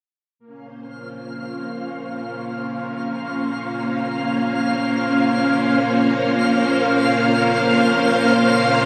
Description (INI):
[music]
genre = ambient, sequencer-driven space music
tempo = free time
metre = none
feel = none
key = Bb minor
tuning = A4 = 440 Hz
[part]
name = string machine, full ensemble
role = sustained chords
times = 0.4-8.9 s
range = Bb3 to F5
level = -20 LUFS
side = equal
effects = ensemble chorus
[part]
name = twinkling granular texture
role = texture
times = 1.0-8.9 s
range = F5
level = -27 LUFS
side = equal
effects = built-in reverb
[sound]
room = wet shimmer reverb, RT60 7.8 s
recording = none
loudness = -19 LUFS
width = mono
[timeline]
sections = 0.4-8.9 A section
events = fade-in on string machine 0.4-8.9; fade-in on synth texture 0.4-8.9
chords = 0.4 Bbmadd9